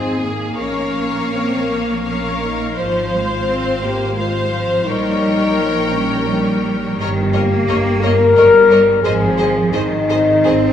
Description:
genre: classical, slow romantic movement for symphony orchestra.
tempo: 81-89 BPM.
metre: 3/4.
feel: rubato.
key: Ab major from 7.0 s.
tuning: A4 = 440 Hz.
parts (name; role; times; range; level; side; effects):
clear studio violin section; melody; 0.0-10.5 s; Ab4 to G5; -30 LUFS; left 3 dB; none.
clear studio violin section; second line; 0.0-10.5 s; Ab4 to Db5; -25 LUFS; left 2 dB; none.
rich studio viola section; accompaniment; 0.0-10.5 s; Ab4 to C5; -24 LUFS; left 1 dB; none.
dark French horn section; sustained chords; 0.0-10.7 s; Bb3 to Bb4; -16 LUFS; left 3 dB; none.
bright studio cello section; bass; 0.0-10.7 s; Eb3 to C4; -22 LUFS; right 1 dB; none.
rich studio double bass section; bass; 0.0-10.7 s; G1 to Bb1; -22 LUFS; right 3 dB; none.
room: wet scoring stage reverb, RT60 1.9 s.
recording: small room reverb.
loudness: -14 LUFS.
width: side -9 dB against mid.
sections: 0.0-10.7 A section.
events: none.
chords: 0.0 Fm (rootless); 0.6 Bbm; 2.8 Fm/Ab; 4.9 Gdim/Bb; 7.0 Eb7/G; 9.1 Ab.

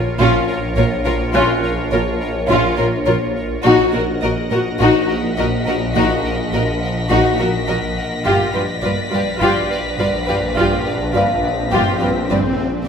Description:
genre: cinematic, suspense film score.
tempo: 52 BPM.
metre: 4/4.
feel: straight.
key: unclear.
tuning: A4 = 440 Hz.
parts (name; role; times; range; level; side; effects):
pulsing gated texture; sustained chords; 0.0-12.9 s; F4 to Gb5; -24 LUFS; equal; chorus, built-in reverb.
swarming drone; drone; 0.0-12.8 s; Bb1; -22 LUFS; equal; built-in reverb, phaser.
warm chamber violin section; melody; 0.2-12.4 s; F4 to Eb5; -21 LUFS; left 3 dB; none.
warm chamber violin section; second line; 0.2-12.4 s; Db4 to B4; -23 LUFS; left 2 dB; none.
warm chamber viola section; accompaniment; 0.2-12.4 s; F4 to Gb4; -23 LUFS; equal; none.
dark chamber cello section; bass; 0.2-12.4 s; G2 to Bb2; -24 LUFS; right 3 dB; none.
warm studio double bass section; bass; 0.2-12.4 s; G1 to Bb1; -24 LUFS; right 4 dB; none.
music box; texture; 1.4-12.8 s; F5 to Gb6; -24 LUFS; left 2 dB; none.
warm chamber violin section; texture; 3.7-12.3 s; Bb6 to Cb7; -29 LUFS; left 4 dB; none.
swell; sound effects; 11.4-12.9 s; none; -25 LUFS; equal; none.
room: moderate scoring stage reverb, RT60 1.4 s.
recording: none.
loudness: -15 LUFS.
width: side -7 dB against mid.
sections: 0.0-12.9 A section.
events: swell 11.4-12.9.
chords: 0.0 Bbm; 3.6 Ebm/Bb; 8.3 G7.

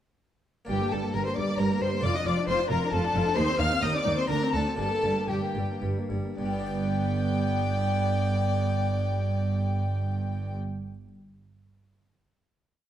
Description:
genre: classical, baroque-style concerto movement with solo episodes.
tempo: 105-136 BPM.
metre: 3/4.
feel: straight.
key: unclear.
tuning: A4 = 440 Hz.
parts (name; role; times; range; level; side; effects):
rich chamber violin section; melody; 0.7-10.6 s; G5 to F6; -35 LUFS; left 3 dB; none.
rich violin; melody; 0.7-10.6 s; G4 to F5; -33 LUFS; left 2 dB; none.
clear studio violin section; second line; 0.7-10.6 s; G4 to G5; -33 LUFS; left 3 dB; none.
harpsichord; accompaniment; 0.7-11.1 s; D2 to B4; -35 LUFS; equal; none.
rich chamber viola section; accompaniment; 0.7-10.6 s; G3 to F4; -34 LUFS; equal; none.
clear chamber double bass section; bass; 0.7-10.6 s; F1 to Eb2; -31 LUFS; right 3 dB; none.
rich chamber cello section; bass; 0.7-10.6 s; D2 to G2; -31 LUFS; right 2 dB; none.
room: moderate recital hall reverb, RT60 1.3 s.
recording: dark, warm production.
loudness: -25 LUFS.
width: side -11 dB against mid.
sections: 0.7-6.4 ritornello; 6.4-9.8 final chord.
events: slowing down 2.7-6.4.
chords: 0.7 Gm; 2.0 Dm/F; 3.4 Cm/Eb; 4.3 D5; 4.8 Gm; 6.4 G.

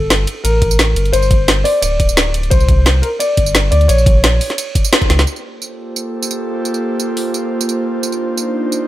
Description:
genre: liquid drum and bass.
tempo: 174 BPM.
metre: 4/4.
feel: straight.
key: G minor.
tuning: A4 = 440 Hz.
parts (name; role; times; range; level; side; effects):
dark grand piano; melody; 0.0-5.1 s; A4 to D5; -18 LUFS; left 2 dB; tape echo.
sub bass with octave; bass; 0.0-5.3 s; D1 to D2; -14 LUFS; equal; tube saturation.
drum and bass drum kit; drums; 0.1-8.8 s; hi-hat, ride cymbal, snare drum, tambourine; -17 LUFS; right 1 dB; overdrive.
electronic kick drum; drums; 0.6-5.1 s; none; -14 LUFS; equal; overdrive.
airy breathy pad; sustained chords; 5.3-8.9 s; Bb3 to C5; -18 LUFS; right 1 dB; chorus, sidechain pumping.
room: light reverb.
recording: none.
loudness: -12 LUFS.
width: side -14 dB against mid.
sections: 0.0-5.3 A section; 5.3-8.9 B section.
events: drop 0.0-5.3; band accent 4.9; drum fill 5.1.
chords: 0.0 Gmadd9; 2.5 Csus2; 3.9 Bbm; 5.3 Gm11; 8.0 Cm11.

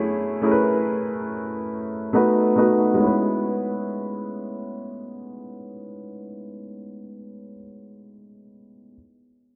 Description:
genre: R&B.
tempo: 70 BPM.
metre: 4/4.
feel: swing 58% on 16ths.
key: E major.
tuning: A4 = 439 Hz.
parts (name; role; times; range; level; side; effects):
warm grand piano; accompaniment; 0.0-9.0 s; G#3 to C#5; -24 LUFS; equal; none.
room: wet lush hall reverb, RT60 2.7 s.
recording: dreamy mix soaked in reverb, low-pass filter.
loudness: -23 LUFS.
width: mono.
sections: 0.0-3.0 A section; 3.0-6.4 B section.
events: filter sweep 0.0-3.0.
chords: 0.0 Amaj7; 2.1 B7; 3.0 E6.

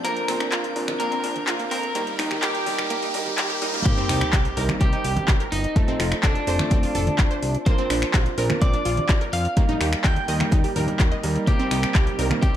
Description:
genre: progressive house.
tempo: 126 BPM.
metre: 4/4.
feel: straight.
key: C dorian.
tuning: A4 = 439 Hz.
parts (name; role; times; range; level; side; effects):
electric guitar at the edge of break-up; melody; 0.0-12.6 s; D4 to G5; -28 LUFS; right 1 dB; spring reverb, sidechain pumping, tape echo.
glassy wavetable pluck; second line; 0.0-12.6 s; D5 to G6; -35 LUFS; equal; chorus, sidechain pumping, tape echo.
lush unison pad; sustained chords; 0.0-3.8, 11.5-12.6 s; C3 to Bb4; -36 LUFS; right 1 dB; chorus, vintage 12-bit sampler grit, sidechain pumping.
wide unison pluck; arpeggios; 0.0-12.5 s; A3 to Eb5; -29 LUFS; equal; vintage 12-bit sampler grit, sidechain pumping, tape echo.
clear grand piano; stabs; 0.0-12.6 s; F3 to Bb4; -30 LUFS; right 2 dB; sidechain pumping, tape echo.
fat analog bass; bass; 0.0-12.6 s; Eb1 to F2; -27 LUFS; equal; sidechain pumping, high-pass filter.
deep house drum kit; drums; 0.0-12.5 s; finger snaps, handclaps, hi-hat; -28 LUFS; left 1 dB; overdrive, sidechain pumping on hats, high-pass filter on hats, high-pass filter on snare, high-pass filter on room.
riser and sub drop; sound effects; 0.2-5.8 s; none; -32 LUFS; equal; none.
drifting glass-harmonics texture; texture; 0.0-3.9 s; G6; -44 LUFS; equal; none.
congas and bongos; percussion; 0.3-12.5 s; none; -32 LUFS; right 1 dB; sidechain pumping on perc.
electronic kick drum; drums; 3.9-12.5 s; none; -20 LUFS; equal; overdrive.
room: moderate recital hall reverb, RT60 1.4 s, digital ambience.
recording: high-pass filter.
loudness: -20 LUFS.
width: side -11 dB against mid.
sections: 0.0-3.9 A section; 3.9-12.6 B section.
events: build-up 0.0-3.9; riser 0.2-3.9; drop 3.9-12.6; impact 3.9-5.8.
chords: 0.0 Bbadd9; 2.0 Eb; 3.9 Cm7; 5.8 F; 7.7 Bbadd9; 9.6 Eb; 11.5 Cm7.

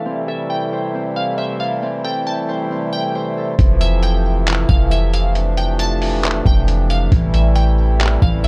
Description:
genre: hip hop, atmospheric cloud-rap.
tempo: 136 BPM.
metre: 4/4.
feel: half-time.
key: F major.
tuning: A4 = 441 Hz.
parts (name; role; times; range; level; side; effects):
glassy wavetable pluck; melody; 0.0-8.5 s; E5 to A5; -28 LUFS; equal; chorus, low-pass filter, delay.
hand-pumped harmonium; sustained chords; 0.0-8.5 s; C3 to E4; -24 LUFS; equal; sidechain pumping, low-pass filter.
Celtic harp; arpeggios; 0.0-5.7 s; E3 to A5; -30 LUFS; equal; low-pass filter, delay.
warm 808-style bass; bass; 3.6-8.5 s; F1 to A1; -18 LUFS; equal; none.
trip hop sampler-style drum kit; drums; 3.6-8.5 s; handclaps, hi-hat, kick drum; -20 LUFS; equal; none.
room: digital ambience.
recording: dark, warm production.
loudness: -17 LUFS.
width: mono.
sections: 0.0-3.6 A section; 3.6-8.5 B section.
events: none.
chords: 0.1 Am7; 3.6 Fmaj7; 7.1 Am7.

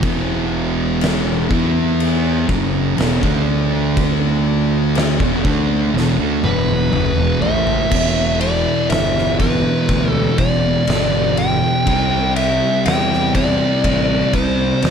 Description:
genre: stoner and doom metal.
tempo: 61 BPM.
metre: 4/4.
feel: straight.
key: E minor.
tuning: A4 = 439 Hz.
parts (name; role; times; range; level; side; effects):
thick fuzz guitar; riff; 0.0-14.9 s; E2 to E4; -21 LUFS; left 11 dB; distortion.
thick fuzz guitar; riff; 0.0-14.9 s; E2 to E4; -20 LUFS; right 11 dB; distortion.
fuzz fingered electric bass; bass; 0.0-14.9 s; E1 to E2; -22 LUFS; equal; overdrive.
oversized low-tuned drum kit; drums; 0.0-14.9 s; crash cymbal, kick drum, ride cymbal, snare drum, toms; -21 LUFS; left 1 dB; none.
fuzz lead guitar; melody; 6.4-14.9 s; B4 to G5; -20 LUFS; equal; distortion, analog delay.
room: light reverb, small room ambience.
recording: none.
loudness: -14 LUFS.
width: side -7 dB against mid.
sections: 0.0-7.9 A section; 7.9-14.9 B section.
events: drum fill 5.9-7.9.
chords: 0.0 E5; 3.2 D5; 5.2 E5; 7.9 Em; 11.9 C.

